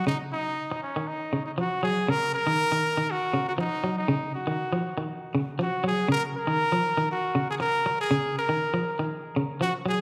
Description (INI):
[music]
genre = afrobeat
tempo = 119 BPM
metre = 4/4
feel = swing 54% on 16ths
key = Eb minor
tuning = A4 = 439 Hz
[part]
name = clear trumpet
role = melody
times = 0.0-10.0 s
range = Db4 to Bb4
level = -29 LUFS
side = equal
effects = analog delay
[part]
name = clean electric guitar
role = arpeggios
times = 0.0-10.0 s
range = Db3 to Gb3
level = -31 LUFS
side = equal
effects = none
[sound]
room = wet large studio reverb, RT60 1.4 s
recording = band playing live in one room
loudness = -27 LUFS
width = mono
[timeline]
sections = 0.0-2.1 A section; 2.1-10.0 B section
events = none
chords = 0.0 Ebm9